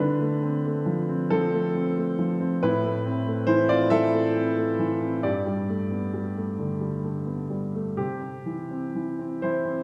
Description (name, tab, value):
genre	neoclassical minimalist piano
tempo	41-47 BPM (dotted quarters)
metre	6/8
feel	rubato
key	C major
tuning	A4 = 442 Hz
part	warm upright piano	solo	0.0-9.8 s	G2 to E5	-26 LUFS	equal	none
room	wet scoring stage reverb, RT60 2.0 s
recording	recorded in a church or concert hall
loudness	-26 LUFS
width	mono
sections	0.0-9.8 A section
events	none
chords	0.0 Dm7; 2.6 Amadd9; 5.2 Gadd9; 8.0 C